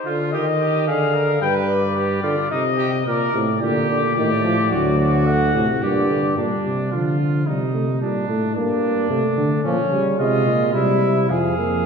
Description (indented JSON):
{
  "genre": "classical, imitative canzona for brass ensemble",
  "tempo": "110 BPM",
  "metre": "3/4",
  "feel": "straight",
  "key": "unclear",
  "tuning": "A4 = 440 Hz",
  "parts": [
    { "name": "warm trumpet", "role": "melody", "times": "0.0-6.4, 9.7-11.9 s", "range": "C5 to G5", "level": "-24 LUFS", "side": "left 6 dB", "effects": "none" },
    { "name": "clear trumpet", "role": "second line", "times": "0.1-11.9 s", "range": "Db4 to B4", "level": "-25 LUFS", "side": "right 3 dB", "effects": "none" },
    { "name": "mellow trombone", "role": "accompaniment", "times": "0.1-11.9 s", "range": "G2 to Bb3", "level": "-22 LUFS", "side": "equal", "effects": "none" },
    { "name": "mellow bass trombone", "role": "bass", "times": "3.3-11.9 s", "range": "D2 to D3", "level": "-21 LUFS", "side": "right 1 dB", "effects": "none" }
  ],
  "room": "wet scoring stage reverb, RT60 1.8 s",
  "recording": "heard from further back in the room",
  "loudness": "-17 LUFS",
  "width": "side -6 dB against mid",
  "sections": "0.0-6.4 A section; 6.4-11.9 B section",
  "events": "none",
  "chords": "0.0 Cm (rootless); 0.9 Ddim; 1.4 G; 2.5 Cm; 3.1 Gm; 4.2 F13/A; 4.7 D; 5.8 Gm; 6.4 Bb (rootless); 7.5 Cm; 8.0 Gm; 9.1 Amadd11/C; 9.6 Bbm; 10.7 C; 11.3 Fm"
}